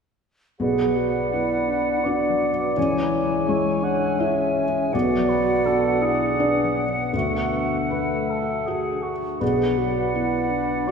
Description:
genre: cinematic, emotional film score for orchestra.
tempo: 82 BPM.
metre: 3/4.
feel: rubato.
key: B dorian.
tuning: A4 = 440 Hz.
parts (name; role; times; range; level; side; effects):
mellow wooden-headed alto flute; melody; 0.6-10.9 s; A3 to G#4; -27 LUFS; right 2 dB; none.
dark cor anglais; second line; 0.6-10.9 s; F#4 to F#5; -28 LUFS; right 3 dB; none.
mellow clarinet; second line; 0.6-10.9 s; C#5 to E5; -27 LUFS; right 1 dB; none.
silver concert flute; second line; 0.6-10.9 s; F#5 to G#5; -29 LUFS; equal; none.
felt-muted upright piano; accompaniment; 0.6-10.9 s; B1 to E5; -26 LUFS; left 2 dB; none.
concert harp; arpeggios; 0.6-10.9 s; B2 to E5; -29 LUFS; left 6 dB; none.
room: wet scoring stage reverb, RT60 2.0 s.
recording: minimal, uncompressed stereo recording.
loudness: -20 LUFS.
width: side -6 dB against mid.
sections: 0.6-10.9 A section.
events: none.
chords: 0.6 Bm; 2.8 C#m; 4.9 Bm; 7.1 Dadd9; 9.4 Bm.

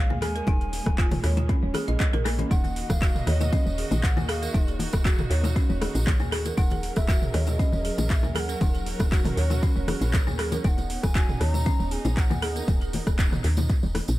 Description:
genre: afro house.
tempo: 118 BPM.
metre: 4/4.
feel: straight.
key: unclear.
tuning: A4 = 439 Hz.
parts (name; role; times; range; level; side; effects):
bass bansuri; melody; 0.0-12.7 s; Eb5 to Bb5; -37 LUFS; equal; dub echo.
warm studio string section; sustained chords; 0.0-14.2 s; Eb3 to Eb5; -36 LUFS; right 2 dB; sidechain pumping.
woody FM bass; bass; 0.0-14.2 s; Eb1 to Eb2; -27 LUFS; equal; tube saturation, sidechain pumping.
folk marimba with hard mallets; arpeggios; 0.1-12.7 s; Bb3 to Eb5; -33 LUFS; right 1 dB; sidechain pumping, dub echo.
deep house drum kit; drums; 0.1-14.2 s; handclaps, hi-hat, rim click, toms; -32 LUFS; right 1 dB; overdrive, tape echo.
bongos; percussion; 0.1-14.1 s; none; -34 LUFS; left 4 dB; tape echo.
electronic kick drum; drums; 0.5-13.8 s; none; -23 LUFS; equal; overdrive.
tambourine; percussion; 2.5-14.2 s; none; -42 LUFS; right 4 dB; none.
room: little or no reverb.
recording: echo-heavy mix.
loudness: -22 LUFS.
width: side -16 dB against mid.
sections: 0.0-14.2 A section.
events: none.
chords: 0.0 Bbm7/Eb; 2.5 Gb/Eb; 10.6 Badd9/D#.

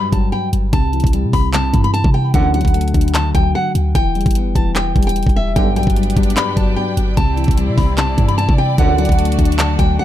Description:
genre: hip hop, trap.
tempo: 149 BPM.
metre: 4/4.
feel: half-time.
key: G major.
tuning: A4 = 442 Hz.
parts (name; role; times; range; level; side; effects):
nylon-string guitar; melody; 0.0-10.0 s; E5 to B5; -21 LUFS; equal; digital delay.
dark concert grand piano; accompaniment; 0.0-10.0 s; G2 to B3; -20 LUFS; left 4 dB; none.
clean 808-style bass; bass; 0.1-10.0 s; E1 to C3; -18 LUFS; equal; none.
trap drum kit; drums; 0.1-9.9 s; handclaps, hi-hat, kick drum; -17 LUFS; equal; none.
warm brass ensemble; stabs; 2.3-2.6, 5.6-5.9, 8.8-9.1 s; A1 to D3; -22 LUFS; right 6 dB; none.
rich symphonic string section; sustained chords; 5.6-10.0 s; A3 to G5; -26 LUFS; right 1 dB; none.
room: little or no reverb.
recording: dark, warm production.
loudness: -13 LUFS.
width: side -12 dB against mid.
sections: 0.0-10.0 A section.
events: none.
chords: 0.0 Gmaj7(no3); 0.7 C; 2.3 D; 4.0 Em; 5.6 Gmaj7; 7.2 Cadd9; 8.8 D.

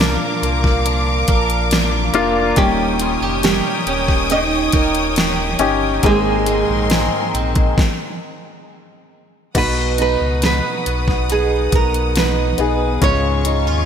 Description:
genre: pop ballad.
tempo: 69 BPM.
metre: 4/4.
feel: straight.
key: Ab major, B major from 9.5 s.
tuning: A4 = 439 Hz.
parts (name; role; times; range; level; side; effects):
nylon-string guitar; melody; 0.0-13.9 s; G3 to Eb5; -21 LUFS; right 4 dB; ping-pong delay.
warm grand piano; accompaniment; 0.0-13.9 s; Ab2 to Ab4; -22 LUFS; left 5 dB; none.
rich studio string section; sustained chords; 0.0-13.9 s; B3 to Eb6; -24 LUFS; left 3 dB; none.
picked steel-string acoustic guitar; arpeggios; 0.0-13.9 s; Bb2 to B4; -24 LUFS; right 5 dB; analog chorus, ping-pong delay.
sub bass with octave; bass; 0.0-13.9 s; Eb1 to D#2; -22 LUFS; equal; none.
smooth R&B drum kit; drums; 0.0-13.7 s; crash cymbal, hi-hat, kick drum, snare drum; -19 LUFS; equal; gated reverb.
room: moderate lush hall reverb, RT60 2.8 s.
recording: bright 1980s-style digital production.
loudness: -14 LUFS.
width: side -8 dB against mid.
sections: 0.0-9.5 A section; 9.5-13.9 A section.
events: stop 7.8-9.5.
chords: 0.0 Bb; 2.6 Eb7; 6.0 Abadd9; 7.8 N.C.; 9.5 B; 13.0 C#.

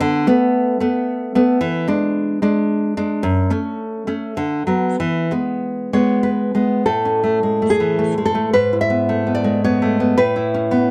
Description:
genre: romantic piece for solo classical guitar.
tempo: 93-115 BPM.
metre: 3/4.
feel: rubato.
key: A major.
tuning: A4 = 443 Hz.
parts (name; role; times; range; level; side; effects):
nylon-string guitar; solo; 0.0-10.9 s; F#2 to E5; -18 LUFS; equal; none.
room: light reverb.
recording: none.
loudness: -18 LUFS.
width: mono.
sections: 0.0-6.9 A section; 6.9-10.9 B section.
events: none.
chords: 0.0 Bm7/D; 1.6 E7; 3.2 F#m; 4.4 Bm/D; 5.0 E; 6.9 A; 8.5 E/G#; 10.2 A.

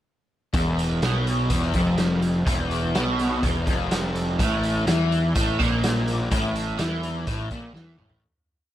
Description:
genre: psychedelic rock.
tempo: 125 BPM.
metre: 4/4.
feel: straight.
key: unclear.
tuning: A4 = 440 Hz.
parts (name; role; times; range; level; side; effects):
overdriven semi-hollow guitar; riff; 0.5-8.2 s; E2 to E3; -23 LUFS; equal; rotary speaker.
fuzz picked electric bass; bass; 0.5-8.2 s; E1 to E2; -29 LUFS; equal; overdrive.
raw garage drum kit; drums; 0.5-8.2 s; hi-hat, kick drum, snare drum, toms; -27 LUFS; equal; none.
room: light reverb.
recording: none.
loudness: -21 LUFS.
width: side -12 dB against mid.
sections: 0.5-8.2 groove.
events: fade-out 6.3-8.2; drum fill 7.8-8.2.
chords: 0.5 E5; 4.4 A5.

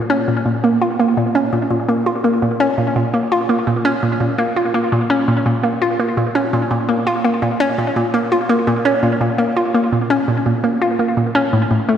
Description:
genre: ambient.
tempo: 84 BPM.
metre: 4/4.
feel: straight.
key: Bb minor.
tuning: A4 = 440 Hz.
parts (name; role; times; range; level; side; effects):
hollow square pluck; solo; 0.1-12.0 s; A2 to F4; -14 LUFS; equal; chorus, phaser, tape echo.
room: wet lush hall reverb, RT60 3.1 s.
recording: dreamy mix soaked in reverb.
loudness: -15 LUFS.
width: side -9 dB against mid.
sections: 0.0-12.0 A section.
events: none.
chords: none.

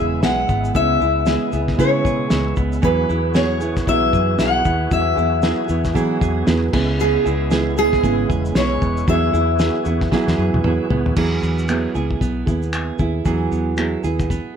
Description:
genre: acoustic pop.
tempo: 115 BPM.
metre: 4/4.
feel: swing 60% on 16ths.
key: E major.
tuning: A4 = 440 Hz.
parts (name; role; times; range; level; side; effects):
fingerpicked steel-string acoustic guitar; melody; 0.0-10.9 s; G#4 to F#5; -20 LUFS; left 2 dB; none.
nylon-string guitar; accompaniment; 0.0-14.6 s; C#3 to G#4; -22 LUFS; right 4 dB; none.
tonewheel organ; sustained chords; 0.0-11.2 s; C#3 to G#4; -32 LUFS; left 2 dB; overdrive, chorus vibrato, fast rotary speaker.
direct-recorded clean electric guitar; arpeggios; 0.0-14.6 s; F#3 to G#4; -30 LUFS; right 7 dB; none.
vintage muted fingered electric bass; bass; 0.0-14.4 s; E1 to E3; -22 LUFS; left 1 dB; none.
cloth-damped thuddy drum kit; drums; 0.2-14.5 s; crash cymbal, finger snaps, kick drum, shaker, snare drum, toms; -23 LUFS; left 1 dB; none.
room: light reverb.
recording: none.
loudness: -16 LUFS.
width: side -7 dB against mid.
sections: 0.0-11.2 A section; 11.2-14.6 B section.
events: drum fill 10.1-11.2.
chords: 0.0 C#m7; 2.8 Eadd9; 6.7 C#m7; 9.1 Eadd9.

